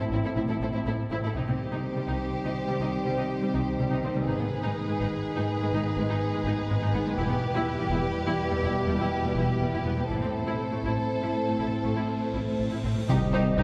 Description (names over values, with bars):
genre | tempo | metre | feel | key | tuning
cinematic, epic orchestral film score | 82 BPM (dotted quarters) | 12/8 | straight | C harmonic minor | A4 = 438 Hz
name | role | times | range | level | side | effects
warm symphonic violin section | melody | 0.0-13.6 s | E4 to C5 | -39 LUFS | equal | none
clear symphonic violin section | second line | 0.0-13.6 s | C4 to A4 | -37 LUFS | equal | none
bright symphonic viola section | accompaniment | 0.0-13.6 s | G3 to E4 | -38 LUFS | equal | none
mellow French horn section | sustained chords | 0.0-13.6 s | Cb4 to E4 | -36 LUFS | equal | none
rich studio cello section | bass | 0.0-13.6 s | E2 to C3 | -34 LUFS | equal | none
clear symphonic double bass section | bass | 0.1-13.6 s | E1 to C2 | -35 LUFS | equal | none
clear trombone section | sustained chords | 1.4-13.6 s | A2 to A3 | -37 LUFS | equal | none
cymbal swell and impact | sound effects | 12.1-13.6 s | none | -43 LUFS | equal | none
dark trumpet | stabs | 13.1-13.6 s | Eb5 | -35 LUFS | equal | none
mellow tuba | bass | 13.1-13.6 s | C2 | -32 LUFS | equal | none
timpani | percussion | 13.1-13.6 s | C3 | -30 LUFS | equal | none
room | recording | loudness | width
wet concert hall reverb, RT60 2.5 s | heard from further back in the room | -28 LUFS | mono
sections
0.0-1.4 A section; 1.4-13.1 B section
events
cymbal swell 12.1-13.1; impact 13.1-13.6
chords
0.0 Am; 1.4 Cm; 4.3 Abm; 7.2 Em; 10.1 Am; 13.1 Cm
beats
0.61 | 1.36 2.09 2.82 3.55 | 4.28 5.01 5.74 6.46 | 7.18 7.91 8.63 9.36 | 10.10 10.85 11.60 12.35 | 13.09